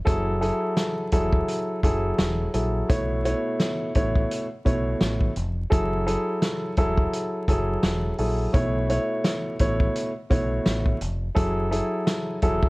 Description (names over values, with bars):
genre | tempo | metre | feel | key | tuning
hip hop, boom-bap hip-hop | 85 BPM | 4/4 | swing 57% on 16ths | F# minor | A4 = 438 Hz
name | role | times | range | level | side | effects
dark grand piano | accompaniment | 0.0-12.7 s | B2 to C#5 | -25 LUFS | equal | cassette tape, high-pass filter, low-pass filter
deep dub fingered electric bass | bass | 0.1-12.7 s | E1 to B1 | -27 LUFS | equal | none
vintage drum kit | drums | 0.1-12.7 s | hi-hat, kick drum, snare drum | -25 LUFS | equal | vintage 12-bit sampler grit
room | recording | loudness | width
studio ambience | worn, warbling old tape, cassette tape, vinyl crackle, warbly pitch drift | -22 LUFS | side -24 dB against mid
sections
0.0-12.7 A section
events
none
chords
0.1 F#m9; 2.9 B9sus4; 5.7 F#m9; 8.5 B9sus4; 11.4 F#m9